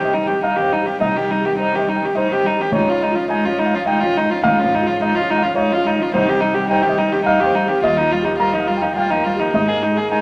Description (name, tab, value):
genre	neoclassical piano and strings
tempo	105 BPM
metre	3/4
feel	rubato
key	unclear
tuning	A4 = 444 Hz
part	warm violin	melody	0.0-10.2 s	Eb4 to Ab4	-21 LUFS	equal	none
part	rich cello	second line	0.0-10.2 s	Eb3 to Bb3	-27 LUFS	equal	none
part	dark viola	accompaniment	0.0-10.2 s	F3 to F4	-34 LUFS	equal	none
part	felt-muted upright piano	accompaniment	0.0-10.2 s	C2 to Bb5	-22 LUFS	equal	none
room	moderate club reverb, RT60 0.6 s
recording	none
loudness	-18 LUFS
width	mono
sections	0.0-10.2 A section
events	none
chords	0.0 Cm; 2.7 Dbadd9; 6.1 Cm; 7.8 Ebadd9; 9.5 Absus2